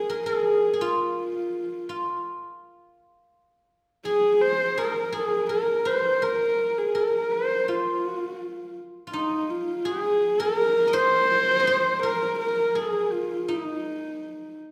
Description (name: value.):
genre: mongolian traditional, Mongolian folk.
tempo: 83 BPM.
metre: 4/4.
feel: straight.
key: F yu mode.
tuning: A4 = 440 Hz.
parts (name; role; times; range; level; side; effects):
dark horsehead fiddle; melody; 0.0-14.6 s; Eb4 to C5; -26 LUFS; equal; none.
guzheng; second line; 0.0-14.7 s; Eb4 to Eb5; -30 LUFS; equal; tape echo.
room: wet recital hall reverb, RT60 1.4 s.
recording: heard from further back in the room.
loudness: -24 LUFS.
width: mono.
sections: 0.0-9.9 A section; 9.9-14.7 B section.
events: none.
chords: none.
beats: 0.45 | 1.17 1.89 2.61 3.33 | 4.06 4.78 5.50 6.23 | 6.95 7.68 8.40 9.13 | 9.86 10.58 11.31 12.03 | 12.76 13.48 14.21.